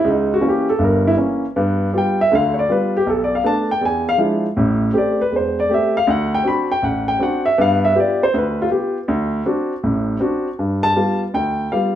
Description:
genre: solo jazz.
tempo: 160 BPM.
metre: 4/4.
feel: swing 66% on 8ths.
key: G mixolydian.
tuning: A4 = 440 Hz.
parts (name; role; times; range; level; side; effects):
warm grand piano; solo; 0.0-12.0 s; E1 to B5; -16 LUFS; equal; none.
room: wet stone room reverb, RT60 0.9 s.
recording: band playing live in one room.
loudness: -16 LUFS.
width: side -11 dB against mid.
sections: 0.0-10.6 A section; 10.6-12.0 B section.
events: grand piano solo 0.0-10.6.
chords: 0.1 C#dim7; 1.6 G7; 3.1 Bm7b5; 3.8 E7b9; 4.6 Am7; 6.1 D7; 7.6 G7; 9.1 D7; 10.6 G7.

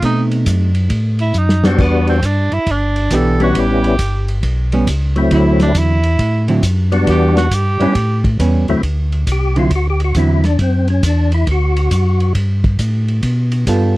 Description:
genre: soul jazz organ trio.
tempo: 136 BPM.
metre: 4/4.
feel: swing 66% on 8ths.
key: D mixolydian.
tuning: A4 = 438 Hz.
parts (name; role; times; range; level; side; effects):
clear tenor saxophone; melody; 0.0-8.3 s; B3 to A4; -20 LUFS; right 2 dB; none.
hollow-body jazz guitar; accompaniment; 0.0-10.4, 13.7-14.0 s; D3 to A4; -16 LUFS; right 2 dB; none.
mellow tonewheel organ; bass; 0.0-14.0 s; G1 to B2; -15 LUFS; equal; slow rotary speaker.
warm soul drum kit; drums; 0.0-13.8 s; crash cymbal, hi-hat, kick drum, ride cymbal, snare drum; -22 LUFS; equal; none.
percussive tonewheel organ; melody; 1.6-12.3 s; D2 to G4; -16 LUFS; left 2 dB; slow rotary speaker, overdrive, chorus vibrato.
room: little or no reverb.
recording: dry, close 1970s-style studio recording.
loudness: -12 LUFS.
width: side -18 dB against mid.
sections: 0.0-8.8 A section; 8.8-14.0 A section.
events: tenor saxophone solo 0.0-8.8; drum fill 1.3-1.8; tonewheel organ solo 8.8-14.0.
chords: 0.0 B7b9; 1.8 Em7; 3.5 A9; 5.3 D9; 7.1 Em7; 7.9 A9; 8.8 D9; 12.3 G9.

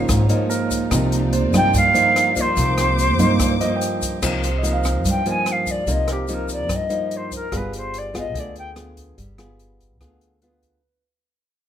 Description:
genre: bossa nova.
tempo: 145 BPM.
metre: 4/4.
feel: straight.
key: C minor.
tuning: A4 = 440 Hz.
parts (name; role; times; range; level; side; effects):
silver concert flute; melody; 0.0-8.7 s; G4 to Ab5; -21 LUFS; right 1 dB; none.
nylon-string guitar; accompaniment; 0.0-10.8 s; G2 to Ab4; -24 LUFS; equal; none.
warm studio string section; sustained chords; 0.0-4.2 s; Bb3 to D6; -25 LUFS; right 5 dB; none.
upright bass; bass; 0.0-10.8 s; G1 to G2; -23 LUFS; equal; none.
open jazz drum kit; drums; 0.1-10.7 s; crash cymbal, hi-hat, kick drum, rim click; -27 LUFS; equal; none.
tube shaker; percussion; 0.1-7.5 s; none; -32 LUFS; left 5 dB; none.
clear concert grand piano; accompaniment; 0.5-11.0 s; Ab4 to G5; -30 LUFS; right 4 dB; none.
room: light reverb.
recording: none.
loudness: -17 LUFS.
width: side -10 dB against mid.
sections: 0.0-4.2 A section; 4.2-10.8 B section.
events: fade-out 4.2-10.8; flute solo 4.2-10.8.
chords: 0.0 Db69; 0.9 Cm11; 4.2 Cm7; 7.5 G7b9.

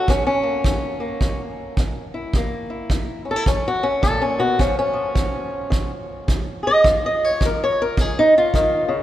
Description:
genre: acoustic country blues, solo or duo.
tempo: 106 BPM.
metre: 4/4.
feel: swing 60% on 8ths.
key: F# major.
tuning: A4 = 440 Hz.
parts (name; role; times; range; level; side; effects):
fingerpicked swing-style acoustic guitar; melody; 0.0-9.0 s; F#2 to D#5; -19 LUFS; equal; none.
kick drum; drums; 0.1-8.7 s; none; -22 LUFS; right 1 dB; none.
room: moderate cathedral reverb, RT60 5.7 s.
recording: recorded in a church or concert hall.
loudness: -18 LUFS.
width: side -13 dB against mid.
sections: 0.0-9.0 A section.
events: steel-string acoustic guitar solo 0.0-9.0.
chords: 0.1 F#; 4.6 C#.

